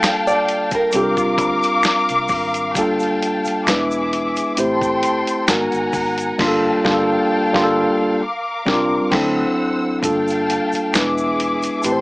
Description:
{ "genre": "R&B, neo-soul", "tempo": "66 BPM", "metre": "4/4", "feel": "swing 53% on 16ths", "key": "G dorian", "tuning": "A4 = 439 Hz", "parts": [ { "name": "mellow tine electric piano", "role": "accompaniment", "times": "0.0-12.0 s", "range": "F#3 to C5", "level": "-19 LUFS", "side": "equal", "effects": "medium stereo tremolo" }, { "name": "muted studio string section", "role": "sustained chords", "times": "0.0-12.0 s", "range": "G#4 to E6", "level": "-21 LUFS", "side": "left 1 dB", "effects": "none" }, { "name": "dusty soul sampler-style drum kit", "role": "drums", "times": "0.0-12.0 s", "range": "crash cymbal, hi-hat, kick drum, snare drum", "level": "-22 LUFS", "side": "equal", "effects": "none" }, { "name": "finger snaps and egg shaker", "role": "percussion", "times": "0.0-12.0 s", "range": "none", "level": "-28 LUFS", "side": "right 1 dB", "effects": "none" }, { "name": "nylon-string guitar", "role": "second line", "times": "0.3-2.5 s", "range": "F4 to D5", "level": "-21 LUFS", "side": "right 1 dB", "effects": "none" }, { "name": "vintage muted fingered electric bass", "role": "bass", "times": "0.9-12.0 s", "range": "E1 to D2", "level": "-33 LUFS", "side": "equal", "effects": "none" } ], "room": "light reverb", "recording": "small speaker sound", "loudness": "-16 LUFS", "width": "side -23 dB against mid", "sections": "0.0-10.0 A section; 10.0-12.0 A section", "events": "band accent 6.4-10.0", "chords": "0.0 Gm9; 0.9 C9sus4; 2.8 Gm9; 3.7 E7; 4.6 Am7; 5.5 Abm9; 6.4 Gm9; 8.2 C9sus4; 9.1 D9; 10.0 Gm9; 10.9 E7" }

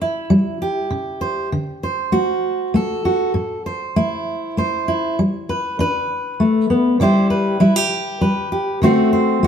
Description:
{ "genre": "folk", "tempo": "99 BPM", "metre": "3/4", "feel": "straight", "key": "unclear", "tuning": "A4 = 440 Hz", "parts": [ { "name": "fingerpicked steel-string acoustic guitar", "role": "solo", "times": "0.0-9.5 s", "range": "A2 to C5", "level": "-16 LUFS", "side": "equal", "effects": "none" } ], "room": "wet stone room reverb, RT60 1.3 s", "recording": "band playing live in one room", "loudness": "-16 LUFS", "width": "side -8 dB against mid", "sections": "0.0-1.5 A section; 1.5-9.5 B section", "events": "none", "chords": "0.0 C; 1.5 D7; 3.3 Am; 5.2 G; 7.0 C; 8.8 D7" }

